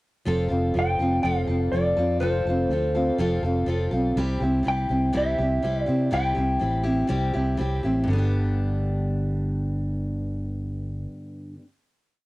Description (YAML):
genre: folk rock and heartland rock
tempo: 122 BPM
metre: 4/4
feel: straight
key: G mixolydian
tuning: A4 = 440 Hz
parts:
  - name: picked steel-string acoustic guitar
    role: accompaniment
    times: 0.3-11.7 s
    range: G2 to A4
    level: -25 LUFS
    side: equal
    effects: cassette tape
  - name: fingered electric bass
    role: bass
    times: 0.3-11.1 s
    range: F1 to C3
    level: -26 LUFS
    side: equal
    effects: none
  - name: mellow electric guitar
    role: melody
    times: 0.8-7.6 s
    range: C5 to G5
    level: -26 LUFS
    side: left 1 dB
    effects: cassette tape, analog delay
room: light reverb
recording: home recording on cassette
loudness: -22 LUFS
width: side -20 dB against mid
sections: 0.3-8.1 verse; 8.1-12.0 final chord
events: none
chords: 0.3 F; 4.2 C; 8.1 G